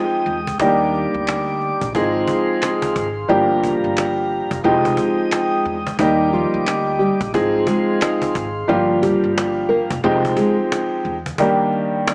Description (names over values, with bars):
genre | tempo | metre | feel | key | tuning
hip hop, boom-bap hip-hop | 89 BPM | 4/4 | swing 62% on 16ths | F dorian | A4 = 440 Hz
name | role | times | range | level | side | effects
warm upright piano | accompaniment | 0.0-12.1 s | Eb3 to Ab4 | -20 LUFS | equal | high-pass filter, low-pass filter
mellow tonewheel organ | sustained chords | 0.0-10.0 s | Ab3 to Eb6 | -28 LUFS | equal | slow rotary speaker, high-pass filter, low-pass filter
upright bass | bass | 0.3-11.3 s | F1 to E2 | -31 LUFS | equal | none
cajon | drums | 0.3-12.1 s | none | -28 LUFS | equal | none
finger snaps | percussion | 1.3-8.2 s | none | -35 LUFS | equal | none
nylon-string guitar | melody | 6.0-10.6 s | F3 to Eb5 | -24 LUFS | equal | high-pass filter, low-pass filter
room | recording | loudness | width
light reverb | small speaker sound | -19 LUFS | mono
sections
0.0-12.1 A section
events
none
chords
0.0 Fm9; 0.6 Ebmaj7; 1.9 Ab6; 3.3 Gm7; 4.6 Fm9; 6.0 Ebmaj7; 7.3 Ab6; 8.7 Gm7; 10.0 Fm9; 11.4 Ebmaj7